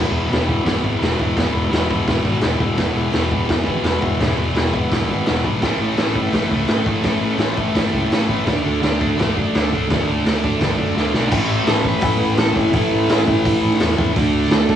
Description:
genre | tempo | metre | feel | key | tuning
garage rock duo or trio | 169 BPM | 4/4 | straight | unclear | A4 = 440 Hz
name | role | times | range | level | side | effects
thick fuzz guitar | riff | 0.0-14.8 s | E2 to D4 | -19 LUFS | equal | distortion
fuzz fingered electric bass | bass | 0.0-14.8 s | E1 to F#2 | -23 LUFS | equal | overdrive
raw garage drum kit | drums | 0.3-14.8 s | crash cymbal, hi-hat, kick drum, snare drum | -21 LUFS | equal | cassette tape
electric slide guitar | melody | 11.7-14.8 s | E4 to B4 | -22 LUFS | right 1 dB | cassette tape
room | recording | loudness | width
light reverb | home recording on cassette, small room ambience | -16 LUFS | side -10 dB against mid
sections
0.0-11.3 A section; 11.3-14.8 B section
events
drum fill 11.0-11.3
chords
0.0 E5; 5.6 A5; 8.5 D5; 11.3 A5; 14.2 D5

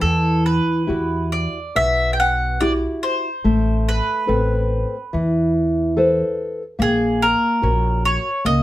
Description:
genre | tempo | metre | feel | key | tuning
fado-style ballad | 72 BPM | 4/4 | rubato | E minor | A4 = 439 Hz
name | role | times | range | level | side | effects
mandolin | melody | 0.0-8.6 s | G#4 to G5 | -21 LUFS | right 1 dB | none
nylon-string guitar | accompaniment | 0.0-8.6 s | B2 to C#5 | -20 LUFS | left 1 dB | none
upright bass | bass | 0.0-8.6 s | A1 to E2 | -22 LUFS | equal | none
room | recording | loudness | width
moderate studio reverb, RT60 0.6 s | none | -17 LUFS | side -15 dB against mid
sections
0.0-8.6 A section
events
none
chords
0.0 Emadd9; 3.4 Amadd9; 6.8 F#/A#

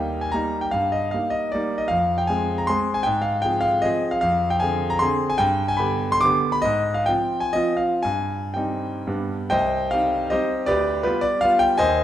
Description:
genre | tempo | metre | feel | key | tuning
classical, romantic triple-time dance for piano with dotted rhythms | 113-170 BPM | 3/4 | rubato | C minor from 4.2 s | A4 = 440 Hz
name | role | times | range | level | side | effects
clear concert grand piano | solo | 0.0-12.0 s | C2 to D6 | -20 LUFS | equal | none
room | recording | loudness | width
moderate recital hall reverb, RT60 1.3 s | minimal, uncompressed stereo recording | -20 LUFS | side -11 dB against mid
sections
0.0-9.5 A section; 9.5-12.0 B section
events
none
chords
0.0 Eb; 0.7 Eb/G; 1.9 Fm; 3.0 Fm/Ab; 4.2 Dm7b5/F; 5.4 G; 6.7 Fm/Ab; 8.0 Cm/G; 9.1 G; 9.5 Cm; 10.7 G7/D

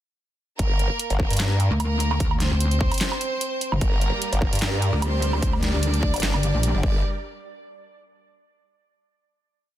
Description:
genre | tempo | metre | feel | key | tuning
heavy wobble dubstep | 149 BPM | 4/4 | swing 54% on 16ths, half-time | G minor | A4 = 440 Hz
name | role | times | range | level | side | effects
warm studio violin section | melody | 0.6-7.0 s | Bb3 to D5 | -29 LUFS | right 1 dB | dub echo
formant-sweep wobble bass | bass | 0.6-7.0 s | G1 to G2 | -23 LUFS | equal | chorus, overdrive
dubstep drum kit | drums | 0.6-6.7 s | handclaps, hi-hat, snare drum, woodblock | -28 LUFS | right 2 dB | overdrive
electronic kick drum | drums | 0.6-6.9 s | none | -25 LUFS | equal | overdrive
pulsing pluck wobble bass | bass | 1.7-6.8 s | G1 to D2 | -22 LUFS | equal | chorus, overdrive
supersaw chords | sustained chords | 3.8-7.0 s | G3 to D5 | -33 LUFS | right 1 dB | sidechain pumping
room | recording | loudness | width
little or no reverb | dense, heavily limited modern master | -20 LUFS | side -13 dB against mid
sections
0.6-7.0 drop; 7.0-8.6 final hit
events
drop 0.6-7.0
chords
0.6 Gm; 7.0 N.C.

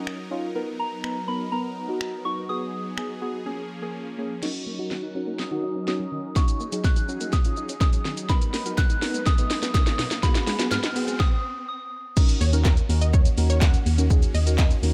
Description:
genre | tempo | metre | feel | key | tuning
dance-pop | 124 BPM | 4/4 | straight | Eb minor | A4 = 441 Hz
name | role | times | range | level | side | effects
soft synth bell | melody | 0.0-12.1 s | A#5 to Gb6 | -34 LUFS | equal | chorus, low-pass filter, delay
deep mellow chord stab | accompaniment | 0.0-14.9 s | Bb3 to Db5 | -34 LUFS | equal | chorus, phaser, sidechain pumping, low-pass filter
supersaw chords | sustained chords | 0.0-14.9 s | Eb3 to B4 | -38 LUFS | equal | sidechain pumping, low-pass filter
house drum kit | drums | 0.1-14.9 s | crash cymbal, finger snaps, handclaps, hi-hat, kick drum, shaker, snare drum | -24 LUFS | equal | none
tight sequenced synth | arpeggios | 4.4-11.1 s | Ab2 to Eb4 | -38 LUFS | equal | chorus, phaser, sidechain pumping, low-pass filter, delay
riser | sound effects | 7.2-11.2 s | none | -41 LUFS | equal | none
group handclap | percussion | 8.8-14.7 s | none | -41 LUFS | equal | none
unison pluck | melody | 12.4-14.7 s | Bb4 to Gb5 | -36 LUFS | equal | sidechain pumping, delay
organ-like FM bass | bass | 12.4-14.9 s | Eb2 | -23 LUFS | equal | sidechain pumping
room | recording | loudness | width
digital ambience | none | -24 LUFS | mono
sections
0.0-4.4 A section; 4.4-12.2 B section; 12.2-14.9 C section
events
silent gap 3.5-4.4; build-up 4.4-12.2; drum fill 4.4-11.2; filter sweep 4.4-12.2; riser 7.2-12.2; stop 11.2-12.2; drop 12.2-14.9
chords
0.0 Ebm7; 0.6 Bmaj7; 2.5 Abm7; 3.5 Bbm7; 4.4 Ebm7; 8.3 Bmaj7; 10.2 Abm7; 12.2 Ebm7

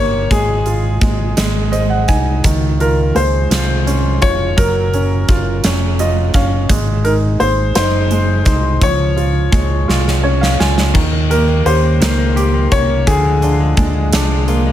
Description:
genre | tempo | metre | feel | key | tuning
six-eight pop ballad | 56 BPM (dotted quarters) | 6/8 | straight | Db major | A4 = 441 Hz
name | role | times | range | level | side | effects
warm concert grand piano | melody | 0.0-14.1 s | Ab4 to Db5 | -19 LUFS | left 2 dB | none
warm grand piano | accompaniment | 0.0-14.7 s | D3 to Ab5 | -19 LUFS | right 2 dB | none
fingered electric bass | bass | 0.0-14.7 s | F1 to Eb2 | -16 LUFS | equal | none
huge arena drum kit | drums | 0.3-14.6 s | crash cymbal, hi-hat, kick drum, snare drum | -18 LUFS | equal | none
direct-recorded clean electric guitar | arpeggios | 10.9-14.7 s | Eb3 to G4 | -23 LUFS | left 6 dB | none
room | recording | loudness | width
small room ambience | none | -12 LUFS | side -12 dB against mid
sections
0.0-14.7 A section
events
grand piano fill 1.4-2.4, 5.6-6.7, 9.9-11.0; drum fill 9.9-11.0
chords
0.3 Fm/Ab; 1.4 Ab; 2.4 Dbadd9; 4.6 Gbmaj7; 6.7 Ab; 8.8 Db; 11.0 Eb7; 13.1 Bb7/D

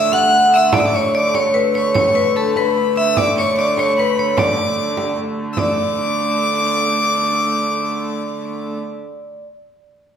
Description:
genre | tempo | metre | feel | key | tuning
medieval dance | 99 BPM (dotted quarters) | 6/8 | straight | D major | A4 = 439 Hz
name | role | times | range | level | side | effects
vibraphone with medium hard mallets | melody | 0.0-9.4 s | A4 to F#5 | -17 LUFS | equal | none
rich fiddle | second line | 0.0-8.8 s | A5 to F#6 | -21 LUFS | left 2 dB | none
dark hurdy-gurdy | drone | 0.0-8.8 s | D3 to A3 | -23 LUFS | right 2 dB | none
frame drum | percussion | 0.1-5.8 s | none | -24 LUFS | right 3 dB | none
room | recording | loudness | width
wet recital hall reverb, RT60 1.4 s | recorded in a church or concert hall | -15 LUFS | side -8 dB against mid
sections
0.0-5.6 A section; 5.6-8.0 B section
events
none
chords
none

